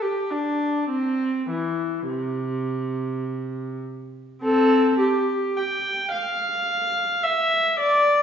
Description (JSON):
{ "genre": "classical, baroque-style suite movement for unaccompanied viola", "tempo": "50-54 BPM", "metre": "3/4", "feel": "rubato", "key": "C major", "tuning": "A4 = 440 Hz", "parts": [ { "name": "rich viola", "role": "solo", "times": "0.0-8.2 s", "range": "C3 to G5", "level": "-21 LUFS", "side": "equal", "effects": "none" } ], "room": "wet recital hall reverb, RT60 1.5 s", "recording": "heard from further back in the room, nothing above 7.6 kHz", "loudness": "-21 LUFS", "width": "side -8 dB against mid", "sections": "0.0-4.4 A section; 4.4-8.2 B section", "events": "none", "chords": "none" }